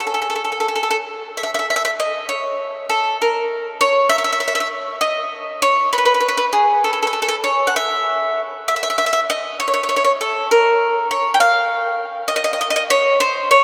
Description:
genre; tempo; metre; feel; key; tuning
italian folk; 66 BPM (dotted quarters); 6/8; straight; C# minor; A4 = 439 Hz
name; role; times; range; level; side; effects
bowl-back mandolin; solo; 0.0-13.6 s; G#4 to G5; -18 LUFS; equal; none
room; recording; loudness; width
wet cathedral reverb, RT60 6.0 s; in a vast, echoing space; -18 LUFS; mono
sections
0.0-1.3 A section; 1.3-13.6 B section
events
none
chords
none

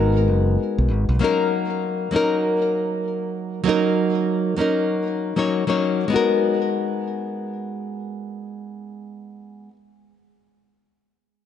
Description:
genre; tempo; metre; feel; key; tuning
sunset chillout; 98 BPM; 4/4; swing 56% on 16ths; G# minor; A4 = 440 Hz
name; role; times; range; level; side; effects
nylon-string guitar; accompaniment; 0.0-9.8 s; F#3 to C#5; -21 LUFS; moving between left 5 dB and right 6 dB; auto-pan, digital delay
modern bright fingered electric bass; bass; 0.0-1.2 s; F#1 to B1; -19 LUFS; right 1 dB; none
room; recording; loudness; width
moderate plate reverb, RT60 2.7 s; dark, warm production, nothing above 10.4 kHz; -19 LUFS; side -9 dB against mid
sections
0.0-6.1 A section; 6.1-8.6 B section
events
none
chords
0.0 G#m9; 1.2 D#m7; 6.1 G#m9

